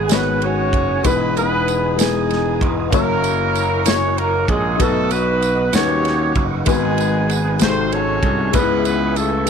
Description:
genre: slow gospel.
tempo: 64 BPM (dotted quarters).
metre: 6/8.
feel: straight.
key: E major.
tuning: A4 = 440 Hz.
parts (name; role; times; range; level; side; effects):
warm horn section; melody; 0.0-9.5 s; D#3 to C#5; -19 LUFS; right 2 dB; none.
dark upright piano; accompaniment; 0.0-9.5 s; G#2 to F#5; -22 LUFS; left 12 dB; none.
tonewheel organ; sustained chords; 0.0-9.5 s; A4 to D#6; -30 LUFS; right 14 dB; slow rotary speaker, overdrive, chorus vibrato.
gritty slap bass; bass; 0.0-9.5 s; E1 to D#2; -22 LUFS; right 1 dB; overdrive.
modern studio drum kit; drums; 0.1-9.5 s; kick drum, ride cymbal, snare drum; -22 LUFS; right 1 dB; none.
tambourine; percussion; 0.1-9.5 s; none; -30 LUFS; right 21 dB; none.
room: light reverb.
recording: 1960s-style stereo with parts hard left and right.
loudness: -15 LUFS.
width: side -7 dB against mid.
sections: 0.0-9.5 A section.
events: none.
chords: 0.0 G#m7; 1.0 Emaj7; 2.9 F#7; 4.8 B; 5.7 D#7alt; 6.7 G#m7; 7.6 G#7b9; 8.5 C#m7.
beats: 0.10 | 1.04 1.98 | 2.92 3.86 | 4.80 5.74 | 6.67 7.61 | 8.54 9.47.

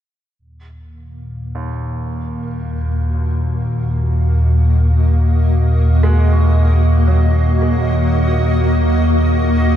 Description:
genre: dark ambient drone.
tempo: free time.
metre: none.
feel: none.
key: Eb minor.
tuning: A4 = 444 Hz.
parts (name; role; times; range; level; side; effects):
granular cloud pad; sustained chords; 1.6-9.8 s; Bb3 to Eb5; -20 LUFS; left 1 dB; built-in reverb.
analog drone; drone; 1.2-9.8 s; Eb2 to Bb2; -14 LUFS; equal; chorus.
clear concert grand piano; arpeggios; 1.6-9.8 s; Eb2 to Gb4; -29 LUFS; right 2 dB; ping-pong delay.
room: wet cathedral reverb, RT60 5.8 s.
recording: none.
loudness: -13 LUFS.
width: side -10 dB against mid.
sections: 0.4-9.8 A section.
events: fade-in on ambient pad 0.4-9.8; fade-in on grand piano 0.4-9.8; filter sweep on synth drone 0.4-9.8.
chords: 0.4 Ebm.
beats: free time.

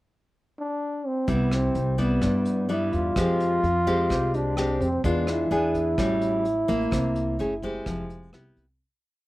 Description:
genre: bossa nova.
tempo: 128 BPM.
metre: 4/4.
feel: straight.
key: C major.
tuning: A4 = 438 Hz.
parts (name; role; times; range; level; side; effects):
breathy trombone; melody; 0.6-8.3 s; B3 to F4; -26 LUFS; right 1 dB; plate reverb.
nylon-string guitar; accompaniment; 1.3-8.7 s; G2 to G#4; -27 LUFS; left 1 dB; none.
upright bass; bass; 1.3-8.8 s; F1 to G2; -28 LUFS; equal; none.
vintage brush drum kit; drums; 1.3-8.7 s; hi-hat, kick drum, rim click; -34 LUFS; equal; none.
room: moderate studio reverb, RT60 0.6 s.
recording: none.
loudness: -22 LUFS.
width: side -17 dB against mid.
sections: 0.0-1.3 pickup bar; 1.3-8.8 A section.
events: fade-out 6.9-8.8.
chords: 0.0 N.C.; 1.3 Cmaj7; 3.2 Fmadd9; 5.0 E7b9; 5.5 E7; 6.0 A6; 6.9 C7; 7.4 F#madd9; 7.9 Fmadd9; 8.3 Cmaj7.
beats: 0.34 0.81 | 1.28 1.75 2.22 2.69 | 3.16 3.63 4.10 4.57 | 5.04 5.51 5.98 6.45 | 6.92 7.39 7.86 8.33.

